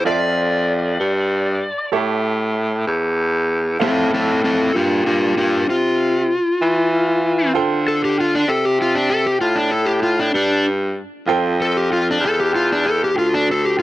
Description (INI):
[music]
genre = slow blues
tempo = 64 BPM (dotted quarters)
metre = 12/8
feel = straight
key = D minor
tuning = A4 = 440 Hz
[part]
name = overdriven slide guitar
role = melody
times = 0.0-13.8 s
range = C4 to D5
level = -18 LUFS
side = left 1 dB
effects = none
[part]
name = warm baritone saxophone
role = bass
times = 0.0-13.8 s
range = D2 to E3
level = -19 LUFS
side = equal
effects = none
[part]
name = bright baby grand piano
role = accompaniment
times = 0.1-13.8 s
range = F4 to G5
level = -25 LUFS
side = right 6 dB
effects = none
[sound]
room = light reverb, small room ambience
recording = dark, warm production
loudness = -16 LUFS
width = side -16 dB against mid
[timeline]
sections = 0.0-3.8 A section; 3.8-13.8 B section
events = electric slide guitar solo 3.8-13.8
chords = 0.1 Dm9; 1.9 A7; 3.8 Dm9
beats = | 0.06 0.99 1.93 2.86 | 3.80 4.73 5.67 6.60 | 7.54 8.47 9.41 10.34 | 11.28 12.21 13.15